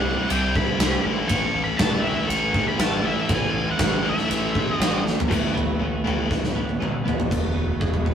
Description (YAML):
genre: quiet-loud alternative rock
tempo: 120 BPM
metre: 4/4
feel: straight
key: unclear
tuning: A4 = 435 Hz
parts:
  - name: octave-fuzz lead guitar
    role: melody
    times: 0.0-5.0 s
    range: E5 to C#6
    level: -27 LUFS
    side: left 1 dB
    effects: distortion
  - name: high-gain distorted guitar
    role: riff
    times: 0.0-7.3 s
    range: A2 to E4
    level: -27 LUFS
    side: left 3 dB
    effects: distortion
  - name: thick fuzz guitar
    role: riff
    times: 0.0-5.0 s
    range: A2 to C4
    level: -28 LUFS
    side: right 5 dB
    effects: distortion
  - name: growling picked electric bass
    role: bass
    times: 0.0-8.1 s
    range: E1 to C2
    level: -30 LUFS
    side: equal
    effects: overdrive
  - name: big rock drum kit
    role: drums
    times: 0.3-8.1 s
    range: crash cymbal, kick drum, ride cymbal, snare drum, toms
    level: -23 LUFS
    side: equal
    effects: none
  - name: twelve-string electric guitar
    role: arpeggios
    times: 5.3-8.1 s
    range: E2 to E4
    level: -29 LUFS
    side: right 2 dB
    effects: none
room: moderate stone room reverb, RT60 1.2 s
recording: rough rehearsal-room recording, warm saturation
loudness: -20 LUFS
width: side -8 dB against mid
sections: 0.0-5.3 A section; 5.3-7.3 B section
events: drum fill 5.0, 6.3-7.3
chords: 0.0 C; 1.0 A; 5.3 Aadd9; 7.3 E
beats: 0.30 0.80 | 1.30 1.80 2.29 2.79 | 3.29 3.79 4.29 4.79 | 5.29 5.79 6.29 6.79 | 7.29 7.79